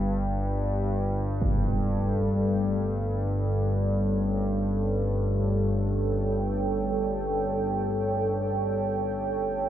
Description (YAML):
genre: dark ambient drone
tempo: free time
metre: none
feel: none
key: unclear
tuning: A4 = 440 Hz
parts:
  - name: analog drone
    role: drone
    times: 0.0-9.7 s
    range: G1 to G2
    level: -26 LUFS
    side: equal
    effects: chorus
  - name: dark analog pad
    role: sustained chords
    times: 1.8-9.7 s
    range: A4 to G5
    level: -30 LUFS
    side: right 2 dB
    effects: chorus
  - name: impact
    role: percussion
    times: 1.4-1.6 s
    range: none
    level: -32 LUFS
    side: equal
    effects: low-pass filter on sfx
room: wet huge ambient reverb, RT60 7.3 s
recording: none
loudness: -24 LUFS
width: side -11 dB against mid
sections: 0.0-9.7 A section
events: fade-out 7.5-9.7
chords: 0.0 Gsus2